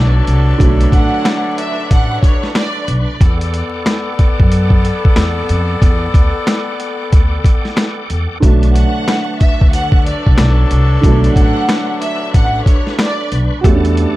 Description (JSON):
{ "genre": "hip hop, boom-bap hip-hop", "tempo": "92 BPM", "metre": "4/4", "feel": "swing 61% on 16ths", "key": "B minor", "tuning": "A4 = 441 Hz", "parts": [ { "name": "warm symphonic violin section", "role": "melody", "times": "0.0-2.9, 8.7-13.3 s", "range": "C#5 to F#5", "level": "-21 LUFS", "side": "right 1 dB", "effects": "digital delay" }, { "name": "dark upright piano", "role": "accompaniment", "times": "0.0-3.2, 8.4-14.2 s", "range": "D3 to G4", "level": "-20 LUFS", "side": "right 3 dB", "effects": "cassette tape" }, { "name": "bright tonewheel organ", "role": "sustained chords", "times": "0.0-14.2 s", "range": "D4 to D6", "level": "-26 LUFS", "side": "equal", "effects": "chorus vibrato, fast rotary speaker" }, { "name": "warm horn section", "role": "stabs", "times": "0.0-14.2 s", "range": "F#3 to D5", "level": "-22 LUFS", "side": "left 3 dB", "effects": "digital delay" }, { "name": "upright bass", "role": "bass", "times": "0.0-14.0 s", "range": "A1 to F#2", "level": "-14 LUFS", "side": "equal", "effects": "none" }, { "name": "boom bap sampler-style drum kit", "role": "drums", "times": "0.3-14.2 s", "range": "hi-hat, kick drum, snare drum", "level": "-12 LUFS", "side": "equal", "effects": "vintage 12-bit sampler grit" }, { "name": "finger snaps", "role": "percussion", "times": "1.3-13.2 s", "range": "none", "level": "-30 LUFS", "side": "left 4 dB", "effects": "none" } ], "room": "little or no reverb", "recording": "dark, warm production, vinyl crackle", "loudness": "-11 LUFS", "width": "side -17 dB against mid", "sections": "0.0-14.2 A section", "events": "none", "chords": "0.0 Bm9; 3.2 Em11; 8.4 Bm9; 13.6 Em11", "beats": "| 0.60 1.25 1.90 2.56 | 3.21 3.86 4.51 5.17 | 5.82 6.47 7.12 7.77 | 8.43 9.08 9.73 10.38 | 11.04 11.69 12.34 12.99 | 13.64" }